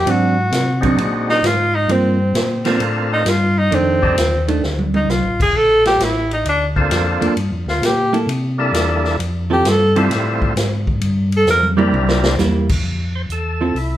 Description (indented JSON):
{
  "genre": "soul jazz organ trio",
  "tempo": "132 BPM",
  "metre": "4/4",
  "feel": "swing 68% on 8ths",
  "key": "F major",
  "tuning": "A4 = 438 Hz",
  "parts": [
    { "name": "clear tenor saxophone", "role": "melody", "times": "0.0-11.7 s", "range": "C4 to Bb4", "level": "-17 LUFS", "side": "equal", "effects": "none" },
    { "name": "mellow tonewheel organ", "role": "bass", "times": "0.0-14.0 s", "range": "F1 to C3", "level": "-20 LUFS", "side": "left 1 dB", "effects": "chorus vibrato, slow rotary speaker" },
    { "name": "vintage hollow-body jazz guitar", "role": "accompaniment", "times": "0.1-13.8 s", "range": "Eb3 to A4", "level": "-20 LUFS", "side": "right 3 dB", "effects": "none" },
    { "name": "vintage drum kit", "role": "drums", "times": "0.1-13.9 s", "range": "crash cymbal, hi-hat, kick drum, ride cymbal, snare drum, toms", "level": "-22 LUFS", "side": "equal", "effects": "none" },
    { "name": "percussive tonewheel organ", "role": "melody", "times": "0.8-14.0 s", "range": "G3 to C5", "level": "-21 LUFS", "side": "left 1 dB", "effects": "slow rotary speaker, overdrive" }
  ],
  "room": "moderate large studio reverb, RT60 1.3 s",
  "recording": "band playing live in one room",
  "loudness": "-14 LUFS",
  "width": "side -12 dB against mid",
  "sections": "0.0-12.8 A section; 12.8-14.0 B section",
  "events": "tenor saxophone solo 0.0-12.8; drum fill 4.6-5.1, 11.5-12.4",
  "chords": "0.1 Ab7#11; 1.9 Gm11; 3.7 F13; 5.5 Bbmaj7; 7.4 Gm7; 8.3 C13; 9.2 Fmaj7; 11.0 Gm7; 11.9 C7; 12.8 Fmaj7"
}